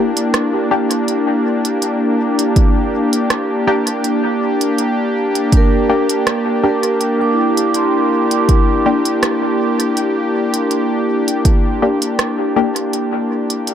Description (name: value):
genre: ambient dub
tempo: 81 BPM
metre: 4/4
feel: swing 53% on 16ths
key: G dorian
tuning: A4 = 439 Hz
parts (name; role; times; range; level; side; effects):
- warm analog pad; sustained chords; 0.0-13.7 s; Bb3 to G4; -16 LUFS; equal; chorus
- vibraphone with soft mallets; arpeggios; 0.0-13.7 s; E4 to D6; -21 LUFS; equal; tape echo
- filtered dub chord stab; stabs; 0.0-13.7 s; Bb3 to G4; -20 LUFS; left 3 dB; chorus, dub echo
- organic electronic drum kit; drums; 0.2-13.7 s; hi-hat, rim click; -21 LUFS; right 2 dB; dub echo
- electronic kick drum; drums; 2.6-11.6 s; none; -13 LUFS; equal; none
room: moderate spring reverb, RT60 2.7 s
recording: none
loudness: -13 LUFS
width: side -9 dB against mid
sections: 0.0-13.7 A section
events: none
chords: 0.0 Gm